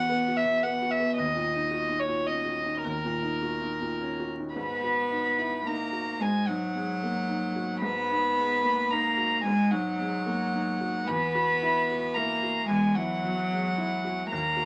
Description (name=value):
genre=neoclassical piano and strings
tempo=111 BPM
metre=3/4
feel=rubato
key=G# minor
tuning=A4 = 437 Hz
part: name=warm violin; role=melody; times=0.0-14.7 s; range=A#4 to B5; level=-31 LUFS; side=equal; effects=none
part: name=clear upright piano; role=accompaniment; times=0.0-14.7 s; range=D#2 to F#4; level=-35 LUFS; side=equal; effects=none
part: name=warm cello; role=second line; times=4.6-14.7 s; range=F#3 to B3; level=-31 LUFS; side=equal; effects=none
room=wet studio reverb, RT60 0.6 s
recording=vinyl crackle, nothing above 10.7 kHz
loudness=-28 LUFS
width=mono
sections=0.0-4.6 A section; 4.6-14.7 B section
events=none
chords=0.0 Esus2; 1.2 D#m7; 4.6 G#m7; 11.1 Esus2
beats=0.11 0.64 | 1.18 1.73 2.28 | 2.85 3.43 4.00 | 4.57 5.12 5.66 | 6.20 6.74 7.28 | 7.83 8.37 8.90 | 9.44 9.98 10.52 | 11.08 11.61 12.15 | 12.69 13.22 13.77 | 14.30